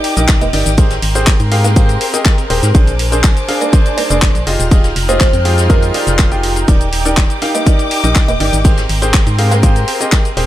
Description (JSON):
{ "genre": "piano house", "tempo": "122 BPM", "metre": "4/4", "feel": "straight", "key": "Eb major", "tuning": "A4 = 443 Hz", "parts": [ { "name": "kalimba", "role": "melody", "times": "0.0-10.0 s", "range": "Bb4 to F5", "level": "-22 LUFS", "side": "right 3 dB", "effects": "digital delay" }, { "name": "rich chamber violin section", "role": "sustained chords", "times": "0.0-10.5 s", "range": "F4 to F6", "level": "-25 LUFS", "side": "left 1 dB", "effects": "sidechain pumping" }, { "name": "clear grand piano", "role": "riff", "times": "0.0-10.5 s", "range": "D4 to G5", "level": "-19 LUFS", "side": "left 1 dB", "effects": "sidechain pumping, digital delay" }, { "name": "house drum kit", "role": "drums", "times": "0.0-10.5 s", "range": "cabasa, handclaps, hi-hat", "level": "-19 LUFS", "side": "left 1 dB", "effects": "none" }, { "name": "jazz brush drum kit", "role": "drums", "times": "0.0-10.5 s", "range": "hi-hat, ride cymbal, snare drum", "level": "-26 LUFS", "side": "right 3 dB", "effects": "sidechain pumping on cymbals, high-pass filter on cymbals, sidechain pumping on hats, high-pass filter on hats, high-pass filter on snare, high-pass filter on room" }, { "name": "dark chamber string section", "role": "texture", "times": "0.0-10.5 s", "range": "Ab3 to D6", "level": "-24 LUFS", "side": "equal", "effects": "sidechain pumping" }, { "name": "organ-like FM bass", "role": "bass", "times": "0.2-10.5 s", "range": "Eb1 to Ab2", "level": "-16 LUFS", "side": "equal", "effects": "sidechain pumping" }, { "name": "electronic kick drum", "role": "drums", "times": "0.3-10.2 s", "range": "none", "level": "-11 LUFS", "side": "equal", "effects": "none" } ], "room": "small room ambience", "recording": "none", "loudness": "-10 LUFS", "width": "side -14 dB against mid", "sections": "0.0-10.5 A section", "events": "none", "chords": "0.0 Ebmaj7; 0.8 Abmaj9; 2.7 Bb9; 4.5 Fm9; 6.7 Ebmaj7; 8.6 Abmaj9" }